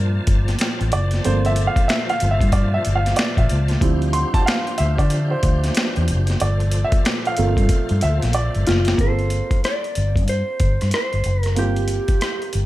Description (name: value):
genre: R&B, neo-soul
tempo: 93 BPM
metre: 4/4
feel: swing 62% on 16ths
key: G dorian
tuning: A4 = 440 Hz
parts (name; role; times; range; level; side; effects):
- warm baby grand piano; accompaniment; 0.0-12.7 s; F3 to C6; -24 LUFS; right 3 dB; none
- tonewheel organ; sustained chords; 0.0-9.0 s; Bb2 to A5; -29 LUFS; left 1 dB; overdrive, chorus vibrato, fast rotary speaker
- vintage muted fingered electric bass; bass; 0.0-12.7 s; F#1 to D3; -19 LUFS; equal; none
- boom bap sampler-style drum kit; drums; 0.3-12.7 s; finger snaps, hi-hat, kick drum, rim click, snare drum; -21 LUFS; equal; none
- mellow electric guitar; melody; 8.7-12.7 s; F4 to D5; -24 LUFS; equal; none
room: light reverb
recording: none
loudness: -17 LUFS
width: side -16 dB against mid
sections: 0.0-9.0 A section; 9.0-12.7 B section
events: grand piano solo 0.0-9.0; drum fill 8.3-9.0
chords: 0.0 Gm11; 3.8 Dm11; 6.4 Gm11